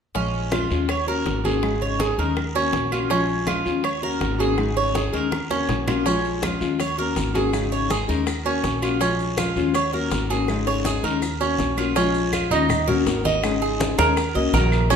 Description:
latin, Cuban son and guajira; 163 BPM; 4/4; straight; A4 = 442 Hz
nylon-string guitar; accompaniment; 0.1-15.0 s; Db3 to Ab4; -24 LUFS; left 5 dB
bongos; percussion; 0.1-15.0 s; -34 LUFS; left 5 dB
Cuban tres; arpeggios; 0.2-15.0 s; Db4 to Eb5; -24 LUFS; right 6 dB
upright bass; bass; 0.2-15.0 s; Ab1 to Eb2; -27 LUFS; equal
congas; percussion; 0.2-15.0 s; -30 LUFS; left 1 dB
guiro; percussion; 0.2-15.0 s; -36 LUFS; left 2 dB
claves; percussion; 0.5-14.9 s; -37 LUFS; right 1 dB
maracas; percussion; 6.1-15.0 s; -38 LUFS; left 3 dB
wet large studio reverb, RT60 1.2 s; minimal, uncompressed stereo recording, lossy compression artefacts; -20 LUFS; side -7 dB against mid
0.2-12.0 A section; 12.0-15.0 B section
drum fill 5.3-6.1, 10.5-12.0
0.2 Bbm7; 0.9 Ebm7; 1.6 Absus4; 2.4 Ebm7; 3.1 Bbm7; 3.8 Ebm7; 4.6 Absus4; 5.3 Ebm7; 6.1 Bbm7; 6.8 Ebm7; 7.5 Absus4; 8.3 Ebm7; 9.0 Bbm7; 9.8 Ebm7; 10.5 Absus4; 11.2 Ebm7; 12.0 Bbm7; 12.7 Ebm7; 13.4 Absus4; 14.2 Ebm7

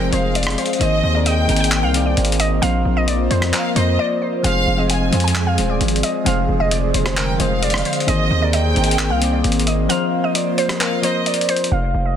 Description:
hip hop, trap; 132 BPM; 4/4; half-time; A4 = 444 Hz
glassy wavetable pluck; melody; 0.0-12.2 s; Bb4 to Ab5; -22 LUFS; right 1 dB; chorus, low-pass filter, tape echo
warm studio violin section; second line; 0.0-11.2 s; Eb5 to Ab5; -25 LUFS; right 1 dB; tape echo
soft electric-piano-like synth keys; accompaniment; 0.0-11.7 s; Eb3 to Eb5; -23 LUFS; left 2 dB; chorus, low-pass filter
airy breathy pad; sustained chords; 0.0-11.7 s; D3 to C5; -25 LUFS; left 1 dB; chorus
distorted 808-style bass; bass; 0.0-12.2 s; Eb1 to F2; -19 LUFS; equal; distortion
breakbeat sampler-style drum kit; drums; 0.1-11.7 s; handclaps, hi-hat, rim click; -22 LUFS; left 2 dB; vintage 12-bit sampler grit, soft clipping on snare
little or no reverb; dense, heavily limited modern master; -15 LUFS; side -9 dB against mid
0.0-11.7 A section
break 4.0-4.4; kick muted 9.9-11.7; hi-hats muted 11.7-12.2
0.0 Fm; 0.8 Abadd9; 2.6 Bbsus2; 4.4 Fm; 8.1 Abadd9; 9.9 Bbsus2

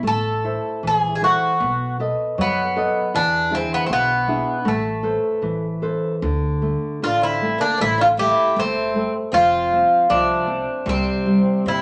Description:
fado-style ballad; 78 BPM; 2/4; rubato; A harmonic minor, D minor from 6.2 s; A4 = 439 Hz
nylon-string guitar; accompaniment; 0.0-11.8 s; B2 to D#5; -26 LUFS; equal
upright bass; bass; 0.0-11.8 s; F1 to G2; -30 LUFS; equal
Greek bouzouki; melody; 0.1-11.8 s; A3 to A4; -21 LUFS; equal
picked twelve-string acoustic guitar; second line; 7.0-11.8 s; G3 to E4; -29 LUFS; equal
wet studio reverb, RT60 0.8 s; -20 LUFS; mono
0.0-6.2 A section; 6.2-11.8 B section
0.0 Am; 1.6 B7; 3.1 E7; 4.7 Amadd9; 6.2 D5; 7.8 Gsus4; 9.3 F; 10.9 C5

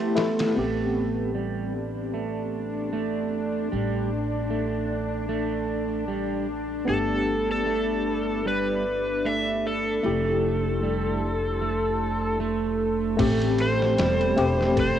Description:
trip hop; 76 BPM; 4/4; swing 56% on 16ths; A minor; A4 = 443 Hz
tine electric piano; accompaniment; 0.0-15.0 s; A3 to A4; -29 LUFS; left 2 dB; medium stereo tremolo, tape echo
dark analog pad; sustained chords; 0.0-15.0 s; F3 to E6; -36 LUFS; left 3 dB; chorus
electric guitar at the edge of break-up; arpeggios; 0.0-15.0 s; G3 to A3; -29 LUFS; right 8 dB; low-pass filter, tape echo
bowed-like drone; texture; 0.0-13.2 s; B3 to D4; -33 LUFS; left 4 dB; built-in reverb
trip hop sampler-style drum kit; drums; 0.2-0.6, 13.2-15.0 s; crash cymbal, kick drum, ride cymbal, snare drum; -30 LUFS; left 1 dB; cassette tape
upright bass; bass; 0.6-15.0 s; E1 to A1; -31 LUFS; left 1 dB; tube saturation
overdriven slide guitar; melody; 6.9-15.0 s; A4 to E5; -27 LUFS; left 1 dB; cassette tape, tape echo
light reverb; home recording on cassette; -23 LUFS; side -10 dB against mid
0.6-13.2 A section; 13.2-15.0 B section
break 0.0-0.6
0.0 Fmaj7; 0.6 Am9; 6.9 Em7/G; 10.0 Fmaj7; 13.2 Am9

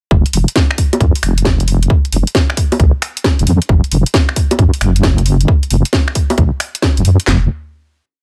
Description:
UK garage, two-step garage; 134 BPM; 4/4; swing 66% on 16ths; A4 = 440 Hz
deep soft wobble bass; bass; 0.1-7.5 s; F1 to Gb2; -14 LUFS; equal; chorus
garage drum kit; drums; 0.1-7.4 s; handclaps, kick drum, snare drum, toms; -15 LUFS; equal
garage drum kit; drums; 0.3-7.3 s; bongos, finger snaps, hi-hat, snare drum; -19 LUFS; equal
little or no reverb; -13 LUFS; mono
0.1-7.3 drop; 7.3-8.2 final note
drop 0.1-7.3

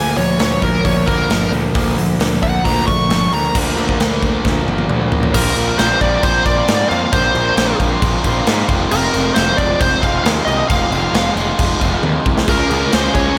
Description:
quiet-loud alternative rock; 134 BPM; 4/4; straight; A4 = 440 Hz
bluesy overdriven lead guitar; melody; 0.0-13.4 s; Bb4 to Db6; -21 LUFS; equal; distortion, slapback echo
electric guitar through a small old amp; arpeggios; 0.0-3.6 s; Bb2 to D4; -29 LUFS; equal
fuzz guitar; riff; 0.0-13.4 s; F2 to Ab4; -23 LUFS; equal; distortion
thick fuzz guitar; riff; 0.0-5.3, 12.5-13.4 s; Bb2 to Ab4; -24 LUFS; equal; distortion
fuzz picked electric bass; bass; 0.0-13.3 s; F1 to Ab2; -22 LUFS; equal; overdrive
big rock drum kit; drums; 0.2-13.3 s; crash cymbal, hi-hat, kick drum, snare drum, splash cymbal, toms; -21 LUFS; equal
ensemble organ-string; sustained chords; 3.5-13.4 s; D3 to Db6; -33 LUFS; equal
moderate lush hall reverb, RT60 2.0 s; big arena sound; -15 LUFS; mono
0.0-3.5 A section; 3.5-5.3 B section; 5.3-13.4 C section
lead electric guitar solo 0.0-3.5; drum fill 4.4-5.3, 12.0-12.5
0.0 Bb; 3.5 Bb7/D; 5.3 Bbadd9; 8.7 Fmadd9; 12.5 Db

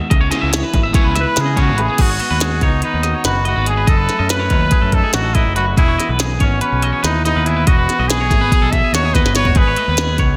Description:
math rock and midwest emo; 286 BPM (eighths); 9/8; straight; A4 = 441 Hz
electric guitar through a small old amp; accompaniment; 0.0-10.4 s; E2 to G#4; -27 LUFS; equal; slapback echo
twangy electric guitar; arpeggios; 0.0-10.4 s; F#4 to E5; -24 LUFS; equal; warbly pitch drift, slapback echo
biting overdriven guitar; riff; 0.1-1.8 s; G#3 to G#4; -28 LUFS; equal
growling picked electric bass; bass; 0.1-10.4 s; E1 to C#3; -21 LUFS; equal; overdrive
glitchy drum kit; drums; 0.1-10.3 s; crash cymbal, hi-hat, kick drum, snare drum, toms; -19 LUFS; equal
bright trumpet; melody; 1.2-10.2 s; C#4 to E5; -22 LUFS; equal
light reverb; -15 LUFS; mono
0.0-2.0 A section; 2.0-10.4 B section
drum fill 9.2-9.6
0.1 C#m7; 2.0 B7; 5.8 Emaj7; 9.6 B7

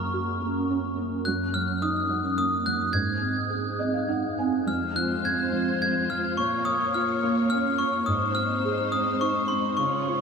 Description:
children's music, lullaby; 106 BPM; 3/4; rubato; A4 = 440 Hz
glockenspiel with hard plastic mallets; melody; 0.0-10.2 s; C6 to Ab6; -27 LUFS; left 1 dB; ping-pong delay
felt-muted upright piano; accompaniment; 0.0-10.2 s; F2 to Ab5; -27 LUFS; right 2 dB; ensemble chorus
dark studio string section; sustained chords; 4.7-10.2 s; Ab3 to Db5; -31 LUFS; left 3 dB
wet huge ambient reverb, RT60 6.5 s; dreamy mix soaked in reverb; -23 LUFS; side -5 dB against mid
0.0-10.2 A section
felt piano fill 3.5-4.7
0.0 Gb; 1.2 Ebm/Gb; 2.9 Ab; 4.7 Fm; 6.4 Bbm; 8.1 Ab

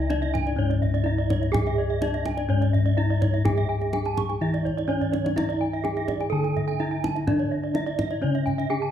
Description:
Balinese gamelan; 125 BPM; 4/4; straight; C# pelog; A4 = 441 Hz
gamelan-type bronze metallophone; melody; 0.0-8.9 s; C#4 to A4-40c; -29 LUFS; right 3 dB
gamelan-type bronze metallophone; arpeggios; 0.0-8.9 s; C#5 to C#6; -32 LUFS; right 9 dB
gamelan-type bossed gongs; bass; 0.0-8.9 s; C#2 to G#4-45c; -25 LUFS; left 2 dB
gamelan-type bronze metallophone; arpeggios; 0.1-8.8 s; C#5 to A5-40c; -33 LUFS; left 5 dB
kendang; percussion; 0.1-8.7 s; -30 LUFS; equal
wet recital hall reverb, RT60 1.3 s; dark, warm production; -22 LUFS; side -10 dB against mid
0.0-8.9 A section
drum fill 5.0-5.4

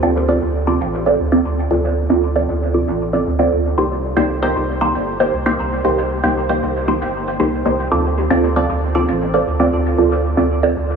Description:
dub techno; 116 BPM; 4/4; straight; D phrygian; A4 = 440 Hz
filtered dub chord stab; stabs; 0.0-10.8 s; Bb3 to D5; -16 LUFS; right 1 dB; phaser, dub echo
soft dub sub bass; bass; 0.0-11.0 s; G1 to D2; -22 LUFS; right 1 dB
wet huge ambient reverb, RT60 6.1 s; heavily compressed radio sound, multiband compression, studio reverb; -15 LUFS; side -6 dB against mid
0.0-11.0 A section
0.0 Dm7; 3.8 Cm7; 7.9 Dm7

